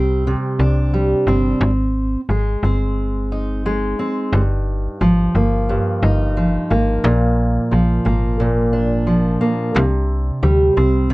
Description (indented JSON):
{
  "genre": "acoustic pop",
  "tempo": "88 BPM",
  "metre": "4/4",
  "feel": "swing 60% on 16ths",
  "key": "C minor",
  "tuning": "A4 = 440 Hz",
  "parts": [
    { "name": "fingerpicked steel-string acoustic guitar", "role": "accompaniment", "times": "0.0-11.1 s", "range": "G2 to Eb4", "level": "-18 LUFS", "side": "right 1 dB", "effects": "none" },
    { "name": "slap-like FM bass", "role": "bass", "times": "0.0-11.1 s", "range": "G1 to D2", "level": "-18 LUFS", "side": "equal", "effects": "none" }
  ],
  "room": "moderate studio reverb, RT60 0.6 s",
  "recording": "worn, warbling old tape, cassette tape, warbly pitch drift",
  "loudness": "-15 LUFS",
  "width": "side -21 dB against mid",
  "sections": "0.0-11.1 A section",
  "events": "none",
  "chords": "0.0 Csus2; 1.6 Ab; 4.3 Ebadd9/G; 7.0 Bb; 9.8 Csus2"
}